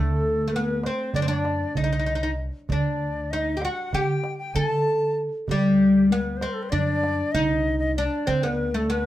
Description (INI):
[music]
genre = Turkish makam ensemble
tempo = 194 BPM (eighths)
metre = 9/8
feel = straight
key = D makam hicaz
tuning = A4 = 440 Hz
[part]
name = oud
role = melody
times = 0.0-9.1 s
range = G3 to A4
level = -23 LUFS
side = left 1 dB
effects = none
[part]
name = breathy bright ney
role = second line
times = 0.0-9.1 s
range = G4 to A5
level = -30 LUFS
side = left 3 dB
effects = none
[part]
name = upright bass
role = bass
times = 0.0-9.1 s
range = C2 to D3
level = -29 LUFS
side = equal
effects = none
[part]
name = darbuka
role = percussion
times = 0.8-9.0 s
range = none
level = -29 LUFS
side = right 4 dB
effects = none
[sound]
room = moderate studio reverb, RT60 0.6 s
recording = minimal, uncompressed stereo recording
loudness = -21 LUFS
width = side -14 dB against mid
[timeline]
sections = 0.0-9.1 A section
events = none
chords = none